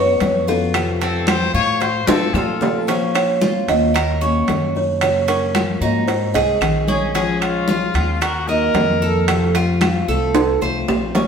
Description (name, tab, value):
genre	latin, Cuban son and guajira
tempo	112 BPM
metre	4/4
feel	straight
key	Bb minor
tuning	A4 = 440 Hz
part	buzzing kalimba	melody	0.0-6.8 s	A4 to Eb5	-21 LUFS	right 2 dB	none
part	picked steel-string acoustic guitar	accompaniment	0.0-11.3 s	C3 to C5	-24 LUFS	left 4 dB	none
part	Cuban tres	arpeggios	0.0-11.3 s	C4 to Eb5	-23 LUFS	right 3 dB	none
part	upright bass	bass	0.0-11.3 s	Bb1 to Bb2	-23 LUFS	equal	none
part	bongos	percussion	0.2-11.3 s	none	-28 LUFS	left 6 dB	none
part	congas	percussion	0.2-11.3 s	none	-25 LUFS	equal	none
part	timbales	percussion	0.2-11.3 s	none	-23 LUFS	right 3 dB	none
part	claves	percussion	0.7-11.2 s	none	-33 LUFS	left 6 dB	none
part	bright trumpet	second line	1.0-2.9, 6.9-9.3 s	F4 to Db5	-22 LUFS	left 4 dB	none
room	wet stone room reverb, RT60 1.3 s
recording	band playing live in one room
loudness	-15 LUFS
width	side -6 dB against mid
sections	0.0-2.9 A section; 2.9-11.3 B section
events	drum fill 2.1-2.9, 10.4-11.3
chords	0.0 Bsus2; 0.7 F; 2.9 Bbmadd9; 3.9 Ebm7; 5.0 Gbmaj7; 6.1 Abadd9; 7.1 Bbm7; 8.2 Ebm; 9.3 F